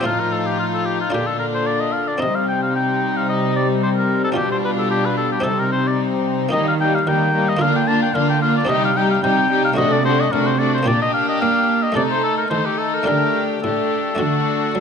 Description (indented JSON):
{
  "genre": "classical, baroque-style concerto movement with solo episodes",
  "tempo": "111 BPM",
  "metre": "4/4",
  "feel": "straight",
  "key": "unclear",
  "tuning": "A4 = 440 Hz",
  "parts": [
    { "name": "rich chamber violin section", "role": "melody", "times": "0.0-14.8 s", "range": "Eb4 to A4", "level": "-28 LUFS", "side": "left 3 dB", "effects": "none" },
    { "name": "warm oboe", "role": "melody", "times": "0.0-14.8 s", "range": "F4 to A5", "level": "-21 LUFS", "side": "left 2 dB", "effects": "none" },
    { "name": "buff-stop harpsichord", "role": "accompaniment", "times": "0.0-14.8 s", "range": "A2 to Bb4", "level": "-26 LUFS", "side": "right 1 dB", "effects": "none" },
    { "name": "dark chamber viola section", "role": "accompaniment", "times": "0.0-14.8 s", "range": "D3 to Bb3", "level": "-23 LUFS", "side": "right 1 dB", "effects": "none" },
    { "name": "warm chamber violin section", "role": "second line", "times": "0.1-14.8 s", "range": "Bb3 to Eb4", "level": "-24 LUFS", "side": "left 7 dB", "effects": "none" },
    { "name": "warm chamber cello section", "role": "bass", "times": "0.1-14.8 s", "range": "A2 to Bb3", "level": "-24 LUFS", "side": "right 4 dB", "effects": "none" }
  ],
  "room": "moderate scoring stage reverb, RT60 1.7 s",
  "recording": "close, detailed microphones",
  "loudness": "-16 LUFS",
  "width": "side -6 dB against mid",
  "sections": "0.0-14.8 A section",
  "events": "none",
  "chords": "0.1 F7/A; 1.1 Bb; 2.2 Cm; 4.4 G7/B; 5.5 Cm; 6.5 Eb; 7.6 Bb/D; 8.7 Cm; 9.8 D7/C; 10.9 Gm/Bb; 12.0 Adim/C; 13.1 Dsus4; 14.2 D"
}